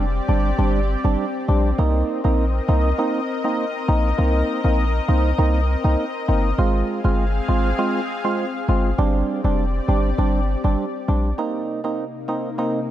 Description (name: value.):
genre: dancehall.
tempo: 100 BPM.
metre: 4/4.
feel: straight.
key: C minor.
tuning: A4 = 440 Hz.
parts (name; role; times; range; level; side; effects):
percussive organ stab; accompaniment; 0.0-12.8 s; G3 to F4; -23 LUFS; right 2 dB; chorus.
lush unison pad; sustained chords; 0.0-12.9 s; C3 to F5; -26 LUFS; left 3 dB; chorus.
warm 808-style bass; bass; 0.0-11.3 s; F1 to C2; -19 LUFS; equal; none.
room: light reverb, digital ambience.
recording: none.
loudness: -18 LUFS.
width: side -12 dB against mid.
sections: 0.0-11.4 A section; 11.4-12.9 B section.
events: none.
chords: 0.0 Gsus4; 1.8 Cm7; 6.6 Ab6; 9.0 Gsus4; 11.4 Cm7.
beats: 0.58 1.18 | 1.78 2.38 2.98 3.58 | 4.18 4.78 5.38 5.98 | 6.58 7.18 7.78 8.38 | 8.98 9.58 10.18 10.78 | 11.38 11.98 12.58.